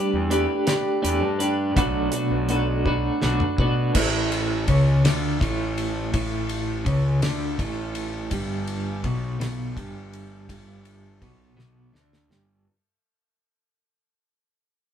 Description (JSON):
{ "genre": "psychedelic rock", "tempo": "55 BPM (dotted quarters)", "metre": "6/8", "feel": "straight", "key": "unclear", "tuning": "A4 = 440 Hz", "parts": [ { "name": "twelve-string electric guitar", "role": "riff", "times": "0.0-12.7 s", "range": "G2 to B4", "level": "-24 LUFS", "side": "equal", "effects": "tremolo" }, { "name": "fuzz fingered electric bass", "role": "bass", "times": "0.1-12.6 s", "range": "G1 to B2", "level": "-28 LUFS", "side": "left 1 dB", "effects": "overdrive" }, { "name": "cloth-damped thuddy drum kit", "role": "drums", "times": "0.3-12.5 s", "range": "crash cymbal, hi-hat, kick drum, ride cymbal, snare drum, toms", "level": "-27 LUFS", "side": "equal", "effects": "none" } ], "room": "wet studio reverb, RT60 0.6 s", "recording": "band playing live in one room", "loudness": "-21 LUFS", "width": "side -9 dB against mid", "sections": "0.0-4.0 A section; 4.0-12.7 B section", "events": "drum fill 2.9-4.0, 11.6-12.7; fade-out 4.0-12.7", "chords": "0.0 Gadd9; 1.8 Bm7; 4.0 A; 8.3 G5", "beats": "0.68 | 1.77 2.86 | 3.96 5.05 | 6.14 7.23 | 8.32 9.40 | 10.49 11.58" }